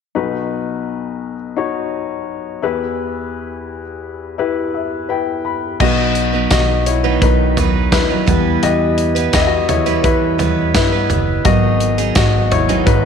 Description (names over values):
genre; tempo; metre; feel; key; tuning
piano-driven pop; 85 BPM; 4/4; straight; B major; A4 = 437 Hz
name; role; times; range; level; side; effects
warm upright piano; accompaniment; 0.1-13.1 s; B1 to B5; -18 LUFS; left 8 dB; none
picked steel-string acoustic guitar; riff; 5.8-13.1 s; G#2 to B4; -20 LUFS; right 13 dB; none
upright bass; bass; 5.8-13.1 s; F#1 to G2; -19 LUFS; right 2 dB; none
modern studio drum kit; drums; 5.8-13.0 s; crash cymbal, hi-hat, kick drum, snare drum, toms; -18 LUFS; right 2 dB; none
tambourine; percussion; 6.5-12.3 s; none; -31 LUFS; right 16 dB; none
room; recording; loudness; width
moderate echo chamber reverb, RT60 2.0 s; 1960s-style stereo with parts hard left and right; -14 LUFS; side -7 dB against mid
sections
0.2-5.8 A section; 5.8-13.1 B section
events
upright piano fill 4.4-5.8; upright piano solo 5.8-13.1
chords
0.2 B; 2.6 Em; 5.8 B; 8.3 Em; 11.5 G#m7